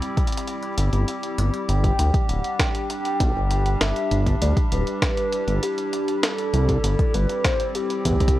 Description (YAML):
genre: IDM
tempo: 99 BPM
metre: 4/4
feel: straight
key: G major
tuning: A4 = 440 Hz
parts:
  - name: warbly tape-like pad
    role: sustained chords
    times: 0.0-8.4 s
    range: G3 to G4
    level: -29 LUFS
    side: equal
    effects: chorus, built-in reverb
  - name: jungle sampler-style drum kit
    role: drums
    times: 0.0-8.4 s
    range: hi-hat, snare drum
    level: -27 LUFS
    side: equal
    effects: studio reverb
  - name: electronic kick drum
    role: drums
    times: 0.2-8.3 s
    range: none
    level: -23 LUFS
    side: equal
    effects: studio reverb
  - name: dark detuned saw bass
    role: bass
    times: 0.8-8.4 s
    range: D1 to E2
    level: -21 LUFS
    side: equal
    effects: none
  - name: warbly nostalgic lead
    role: melody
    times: 1.7-8.4 s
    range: G4 to G5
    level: -26 LUFS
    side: equal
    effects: wide subtle chorus, digital delay
room: digital ambience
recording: worn, warbling old tape, cassette tape, warbly pitch drift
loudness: -20 LUFS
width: side -15 dB against mid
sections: 0.0-8.4 A section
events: none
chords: 0.0 C; 1.7 G5; 6.5 C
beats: 0.47 1.08 | 1.69 2.29 2.90 3.51 | 4.11 4.72 5.32 5.93 | 6.54 7.14 7.75 8.35